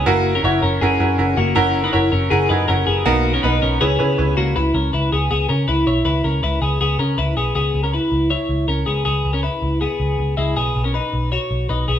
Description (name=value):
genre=indie pop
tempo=160 BPM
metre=4/4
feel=straight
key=C# dorian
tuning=A4 = 440 Hz
part: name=bright upright piano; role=accompaniment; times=0.0-4.6 s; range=B3 to C#5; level=-20 LUFS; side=right 3 dB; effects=none
part: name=twelve-string electric guitar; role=arpeggios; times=0.0-12.0 s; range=G#3 to C#5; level=-19 LUFS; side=left 2 dB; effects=none
part: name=vintage muted picked electric bass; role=bass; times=0.0-12.0 s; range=F#1 to C#3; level=-20 LUFS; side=equal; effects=none
room=wet large studio reverb, RT60 1.0 s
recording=band playing live in one room, nothing above 11.0 kHz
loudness=-16 LUFS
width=side -10 dB against mid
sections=0.0-4.6 A section; 4.6-7.6 B section; 7.6-12.0 C section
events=none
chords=0.1 F#7; 3.1 Bmaj7; 3.8 C#m7; 10.6 B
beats=| 0.07 0.44 0.81 1.19 | 1.56 1.94 2.31 2.69 | 3.06 3.43 3.81 4.18 | 4.56 4.93 5.30 5.68 | 6.05 6.43 6.80 7.18 | 7.55 7.93 8.31 8.68 | 9.06 9.44 9.81 10.19 | 10.56 10.94 11.32 11.69